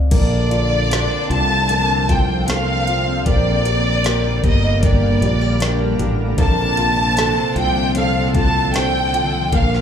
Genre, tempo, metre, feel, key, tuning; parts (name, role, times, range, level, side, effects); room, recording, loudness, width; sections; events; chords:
pop ballad; 76 BPM; 4/4; straight; A4 = 440 Hz
warm grand piano; accompaniment; 0.0-9.8 s; F3 to G5; -27 LUFS; left 1 dB; plate reverb, slapback echo
warm studio violin section; melody; 0.1-9.8 s; D5 to A5; -20 LUFS; equal; plate reverb, slapback echo
rich studio cello section; second line; 0.1-9.8 s; Bb2 to D4; -27 LUFS; left 1 dB; plate reverb, slapback echo
shimmering ambient pad; sustained chords; 1.2-9.8 s; D3 to A4; -26 LUFS; equal; chorus, built-in reverb, plate reverb
picked steel-string acoustic guitar; arpeggios; 0.1-9.8 s; Bb2 to Bb4; -28 LUFS; right 3 dB; plate reverb, slapback echo
fretless electric bass; bass; 0.1-9.8 s; G1 to C2; -20 LUFS; equal
smooth R&B drum kit; drums; 0.1-9.8 s; crash cymbal, hi-hat, kick drum, snare drum; -19 LUFS; equal
light reverb; live gig heard through the venue's PA, club reverb; -15 LUFS; side -8 dB against mid
0.1-9.8 A section
0.1 Dm7/Bb; 3.3 Gm; 6.4 F6/Bb